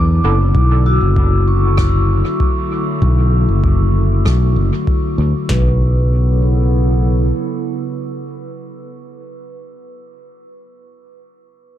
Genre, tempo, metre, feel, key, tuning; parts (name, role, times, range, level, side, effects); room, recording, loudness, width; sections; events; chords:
ambient dub; 97 BPM; 4/4; straight; B minor; A4 = 441 Hz
warbly tape-like pad; sustained chords; 0.0-8.7 s; C#3 to A4; -22 LUFS; equal; chorus, built-in reverb
vibraphone with medium mallets; arpeggios; 0.0-10.5 s; E4 to E6; -24 LUFS; left 2 dB; low-pass filter, dub echo
fingered electric bass; bass; 0.0-7.3 s; F#1 to E2; -13 LUFS; equal
booming analog drum machine; drums; 0.5-5.6 s; kick drum, snare drum; -18 LUFS; equal; overdrive
rim click; drums; 1.8-4.4 s; -30 LUFS; right 1 dB; dub echo
studio reverb; dark, warm production; -12 LUFS; side -12 dB against mid
0.0-5.5 A section; 5.5-8.0 B section
filter sweep on vibraphone 0.0-5.5
0.0 Bm7; 5.5 B5